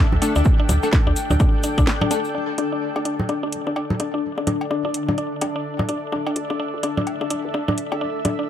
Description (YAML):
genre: minimal techno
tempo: 127 BPM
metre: 4/4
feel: swing 60% on 16ths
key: unclear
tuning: A4 = 440 Hz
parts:
  - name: mallet-like synth pluck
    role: riff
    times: 0.0-8.5 s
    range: D4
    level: -26 LUFS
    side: left 2 dB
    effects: chorus, cassette tape, sidechain pumping, ping-pong delay
  - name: woody FM bass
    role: bass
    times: 0.0-8.3 s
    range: C2 to E2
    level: -23 LUFS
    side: equal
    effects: sidechain pumping, high-pass filter
  - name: granular cloud pad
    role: texture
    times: 0.0-8.5 s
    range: D4 to G5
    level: -27 LUFS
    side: left 1 dB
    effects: built-in reverb, sidechain pumping
  - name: congas, cowbell and bongos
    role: percussion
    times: 0.1-8.4 s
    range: none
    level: -27 LUFS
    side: equal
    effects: tape echo
  - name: wavetable chord stab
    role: stabs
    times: 0.2-2.2 s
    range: A3 to A4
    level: -27 LUFS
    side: left 3 dB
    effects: tape echo
  - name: garage drum kit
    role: drums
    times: 0.2-8.4 s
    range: hi-hat, snare drum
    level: -26 LUFS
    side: right 1 dB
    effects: none
  - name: tube shaker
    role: percussion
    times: 0.2-2.3 s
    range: none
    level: -34 LUFS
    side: left 2 dB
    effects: none
  - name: electronic kick drum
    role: drums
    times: 0.5-1.9 s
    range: none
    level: -18 LUFS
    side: equal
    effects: none
room: light reverb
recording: none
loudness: -19 LUFS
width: side -10 dB against mid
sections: 0.0-2.3 A section; 2.3-8.5 B section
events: drop 0.0-2.3; break 1.9-2.3; filter sweep on synth arpeggio sound 2.3-8.5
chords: 0.0 D5